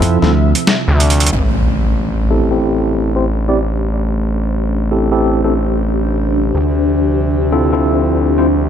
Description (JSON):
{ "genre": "glitch hop", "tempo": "92 BPM", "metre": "4/4", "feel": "swing 62% on 16ths", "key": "unclear", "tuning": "A4 = 436 Hz", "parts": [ { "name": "warm analog pad", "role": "sustained chords", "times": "0.0-8.7 s", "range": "C3 to E5", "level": "-24 LUFS", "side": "right 3 dB", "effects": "chorus" }, { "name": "tine electric piano", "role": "stabs", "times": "0.0-8.5 s", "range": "C4 to D5", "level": "-18 LUFS", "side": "equal", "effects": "medium stereo tremolo, vintage 12-bit sampler grit, low-pass filter, dub echo" }, { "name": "slap bass with an envelope filter", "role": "bass", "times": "0.0-0.5 s", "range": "D2 to F2", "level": "-13 LUFS", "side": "equal", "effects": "tube saturation" }, { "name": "boom bap sampler-style drum kit", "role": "drums", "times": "0.0-1.4 s", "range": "hi-hat, snare drum", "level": "-16 LUFS", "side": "equal", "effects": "overdrive, low-pass filter on hats, low-pass filter on snare" }, { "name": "gritty driven synth bass", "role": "bass", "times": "0.9-8.7 s", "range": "A1 to D2", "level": "-16 LUFS", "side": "equal", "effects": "none" }, { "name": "impact", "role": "sound effects", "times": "1.3-3.9 s", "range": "none", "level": "-19 LUFS", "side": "equal", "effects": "none" }, { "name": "granular cloud pad", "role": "texture", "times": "2.8-8.7 s", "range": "D4 to C5", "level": "-20 LUFS", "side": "left 2 dB", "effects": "built-in reverb" } ], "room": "light reverb", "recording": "none", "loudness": "-12 LUFS", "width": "side -8 dB against mid", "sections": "0.0-1.3 A section; 1.3-8.7 B section", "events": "drum fill 1.0-1.3; impact 1.3-3.9; filter sweep on tine electric piano 1.3-8.7", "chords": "0.0 Dm9; 1.3 Am7; 6.5 Dm9" }